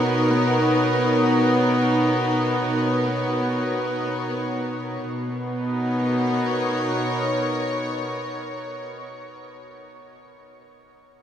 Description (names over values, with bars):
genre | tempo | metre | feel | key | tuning
ambient | free time | none | none | B major | A4 = 439 Hz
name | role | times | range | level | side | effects
rich studio string section | sustained chords | 0.0-8.9 s | B2 to C#5 | -21 LUFS | equal | none
room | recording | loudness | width
wet huge ambient reverb, RT60 7.6 s | none | -20 LUFS | side -9 dB against mid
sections
0.0-5.1 A section; 5.1-9.9 B section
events
none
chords
0.0 Bmaj7